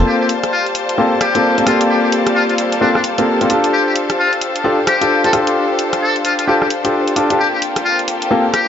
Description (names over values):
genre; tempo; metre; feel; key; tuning
UK garage, two-step garage; 131 BPM; 4/4; swing 62% on 16ths; G minor; A4 = 441 Hz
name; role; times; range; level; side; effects
rich studio violin section; sustained chords; 0.0-8.7 s; G3 to D5; -23 LUFS; left 1 dB; low-pass filter
clear grand piano; stabs; 0.0-8.4 s; Bb3 to A4; -16 LUFS; left 1 dB; tape echo
rich symphonic string section; texture; 0.0-8.7 s; G4 to A5; -21 LUFS; left 1 dB; none
trumpet with metal mute; melody; 0.1-8.7 s; D4 to A4; -19 LUFS; left 3 dB; tape echo
garage drum kit; drums; 0.3-8.7 s; hi-hat, rim click; -21 LUFS; equal; none
room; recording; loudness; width
moderate plate reverb, RT60 1.2 s, small room ambience; nothing above 7.6 kHz; -13 LUFS; side -8 dB against mid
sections
0.1-8.7 A section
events
none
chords
0.1 Gm11; 3.7 F69; 7.4 Gm11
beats
| 0.06 0.52 0.98 1.44 | 1.90 2.35 2.81 3.27 | 3.73 4.19 4.64 5.10 | 5.56 6.02 6.48 6.93 | 7.39 7.85 8.31